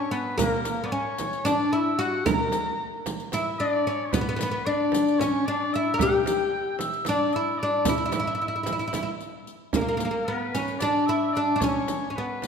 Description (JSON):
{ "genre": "Turkish makam ensemble", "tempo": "224 BPM (eighths)", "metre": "7/8", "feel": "straight", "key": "E makam nikriz", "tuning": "A4 = 439 Hz", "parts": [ { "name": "oud", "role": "melody", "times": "0.0-12.5 s", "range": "A#3 to A#4", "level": "-25 LUFS", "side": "left 1 dB", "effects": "none" }, { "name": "warm oboe", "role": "second line", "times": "0.0-12.5 s", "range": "A#4 to A#5", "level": "-30 LUFS", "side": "left 2 dB", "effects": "none" }, { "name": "riq", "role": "percussion", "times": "0.1-12.5 s", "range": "none", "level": "-36 LUFS", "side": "left 4 dB", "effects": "none" }, { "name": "frame drum", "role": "percussion", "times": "0.4-12.5 s", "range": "none", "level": "-30 LUFS", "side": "right 4 dB", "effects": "none" } ], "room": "wet scoring stage reverb, RT60 1.9 s", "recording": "none", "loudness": "-23 LUFS", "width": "side -6 dB against mid", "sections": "0.0-9.7 A section; 9.7-12.5 B section", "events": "none", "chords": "none", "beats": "0.12 | 0.39 0.65 0.92 1.19 1.45 1.72 1.99 | 2.25 2.52 2.79 3.06 3.32 3.59 3.86 | 4.12 4.39 4.66 4.93 5.19 5.46 5.73 | 6.00 6.26 6.53 6.80 7.07 7.33 7.60 | 7.87 8.14 8.40 8.67 8.94 9.21 9.48 | 9.74 10.01 10.28 10.55 10.82 11.09 11.35 | 11.62 11.89 12.16 12.43" }